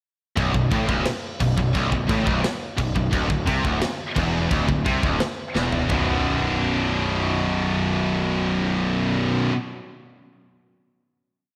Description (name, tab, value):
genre	heavy metal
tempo	174 BPM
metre	4/4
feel	straight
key	B phrygian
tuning	A4 = 440 Hz
part	heavy high-gain guitar	riff	0.4-9.5 s	B1 to D4	-31 LUFS	equal	distortion
part	high-gain distorted guitar	riff	0.4-9.6 s	B1 to C3	-29 LUFS	equal	distortion
part	high-gain distorted guitar	riff	0.4-9.5 s	B1 to C3	-28 LUFS	equal	distortion, slapback echo
part	fuzz picked electric bass	bass	0.4-9.5 s	B0 to C2	-29 LUFS	equal	overdrive
part	tight metal drum kit	drums	0.4-6.0 s	crash cymbal, kick drum, snare drum, toms	-29 LUFS	equal	none
room	moderate lush hall reverb, RT60 1.9 s, small room ambience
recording	big arena sound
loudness	-23 LUFS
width	mono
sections	0.4-5.9 riff; 5.9-8.7 final chord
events	drum fill 5.6-5.9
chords	0.4 Asus2/B; 3.1 Cadd9/D; 5.9 Bm